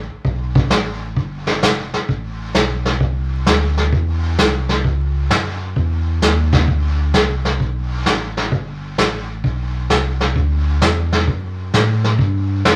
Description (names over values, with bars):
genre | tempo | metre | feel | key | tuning
country, western swing | 131 BPM | 4/4 | swing 67% on 8ths | unclear | A4 = 439 Hz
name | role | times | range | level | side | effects
sub bass with octave | bass | 0.0-12.8 s | F1 to A2 | -22 LUFS | equal | none
vintage brush drum kit | drums | 0.2-12.8 s | brushed snare drum, hi-hat, kick drum, snare drum | -20 LUFS | equal | none
room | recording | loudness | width
moderate studio reverb, RT60 0.7 s | vinyl crackle | -18 LUFS | mono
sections
0.0-12.8 A section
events
none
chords
none